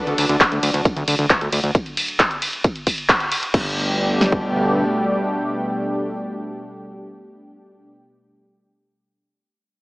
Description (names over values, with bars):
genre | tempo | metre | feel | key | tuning
uplifting trance | 134 BPM | 4/4 | straight | G major | A4 = 439 Hz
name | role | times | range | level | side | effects
lush unison pad | sustained chords | 0.0-7.9 s | B2 to G4 | -23 LUFS | equal | chorus, sidechain pumping
fat analog bass | bass | 0.1-4.8 s | G1 to D2 | -21 LUFS | equal | sidechain pumping
punchy analog drum machine | drums | 0.1-3.6 s | crash cymbal, handclaps, hi-hat, ride cymbal | -20 LUFS | equal | none
big-room dance drum kit | drums | 0.4-4.4 s | kick drum, snare drum | -20 LUFS | equal | overdrive
room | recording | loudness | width
moderate lush hall reverb, RT60 1.7 s, digital ambience | small speaker sound | -17 LUFS | side -23 dB against mid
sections
0.0-3.5 A section; 3.5-7.1 B section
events
drop 0.0-3.5; band accent 3.1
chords
0.0 D; 3.5 Gadd9